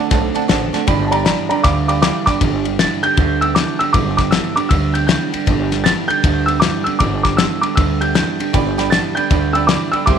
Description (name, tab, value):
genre	rockabilly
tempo	157 BPM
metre	4/4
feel	swing 64% on 8ths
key	G major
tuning	A4 = 439 Hz
part	dark upright piano	melody	0.0-10.2 s	D5 to A6	-19 LUFS	right 1 dB	none
part	picked steel-string acoustic guitar	accompaniment	0.0-10.2 s	G2 to A4	-26 LUFS	left 11 dB	none
part	tack piano	accompaniment	0.0-2.4, 8.5-10.2 s	D5 to C6	-24 LUFS	right 13 dB	none
part	electric guitar through a small old amp	riff	0.0-10.2 s	G2 to B3	-21 LUFS	right 15 dB	none
part	upright bass	bass	0.1-10.2 s	G1 to D2	-21 LUFS	equal	none
part	cloth-damped thuddy drum kit	drums	0.1-10.2 s	kick drum, ride cymbal, snare drum	-18 LUFS	left 4 dB	none
room	light reverb, studio reverb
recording	1960s-style stereo with parts hard left and right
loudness	-14 LUFS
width	side -8 dB against mid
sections	0.0-2.4 A section; 2.4-10.2 B section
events	upright piano solo 0.0-2.4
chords	0.0 D7; 0.9 G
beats	0.11 0.49 | 0.88 1.26 1.64 2.02 | 2.41 2.79 3.17 3.56 | 3.94 4.32 4.71 5.09 | 5.47 5.86 6.24 6.62 | 7.00 7.39 7.77 8.15 | 8.54 8.92 9.30 9.69 | 10.07